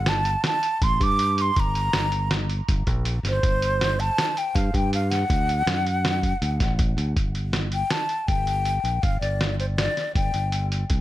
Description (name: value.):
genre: progressive instrumental, band music in an uneven meter.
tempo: 161 BPM.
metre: 5/4.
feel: straight.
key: unclear.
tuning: A4 = 441 Hz.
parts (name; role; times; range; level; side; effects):
breathy concert flute; melody; 0.0-10.7 s; C5 to D6; -25 LUFS; equal; tape echo.
fingered electric bass; bass; 0.0-11.0 s; G1 to G2; -25 LUFS; equal; none.
lo-fi sampler-style drum kit; drums; 0.1-11.0 s; hi-hat, kick drum, snare drum; -25 LUFS; equal; none.
room: little or no reverb.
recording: none.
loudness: -21 LUFS.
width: side -15 dB against mid.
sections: 0.0-7.2 A section; 7.2-11.0 B section.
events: none.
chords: 0.0 D5/G; 1.6 Gm; 3.4 C5/G; 5.3 D; 7.2 N.C..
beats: 0.06 0.44 0.81 1.19 | 1.56 1.94 2.31 2.68 3.06 | 3.43 3.81 4.18 4.55 4.92 | 5.30 5.67 6.04 6.42 6.79 | 7.16 7.54 7.91 8.28 8.66 | 9.03 9.40 9.78 10.15 10.52 | 10.89.